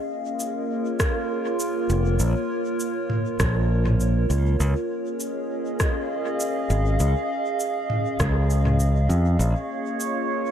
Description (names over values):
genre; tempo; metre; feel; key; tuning
ambient dub; 100 BPM; 4/4; straight; unclear; A4 = 439 Hz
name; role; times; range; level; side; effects
warbly tape-like pad; sustained chords; 0.0-10.5 s; Bb3 to F5; -26 LUFS; equal; chorus, built-in reverb
organic electronic drum kit; drums; 0.4-10.1 s; rim click, shaker, toms; -29 LUFS; equal; overdrive, dub echo
electronic kick drum; drums; 1.0-8.3 s; none; -25 LUFS; equal; none
modern bright fingered electric bass; bass; 1.9-9.5 s; F1 to F2; -20 LUFS; equal; none
drifting glass-harmonics texture; texture; 9.6-10.5 s; Db5; -29 LUFS; right 8 dB; chorus, built-in reverb
room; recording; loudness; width
light reverb; none; -21 LUFS; side -9 dB against mid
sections
0.0-10.5 A section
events
none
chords
0.0 Bbm7; 4.6 Db; 9.4 Bbm7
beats
0.40 1.00 1.60 | 2.20 2.80 3.40 4.00 | 4.60 5.20 5.80 6.40 | 7.00 7.60 8.20 8.80 | 9.40 10.00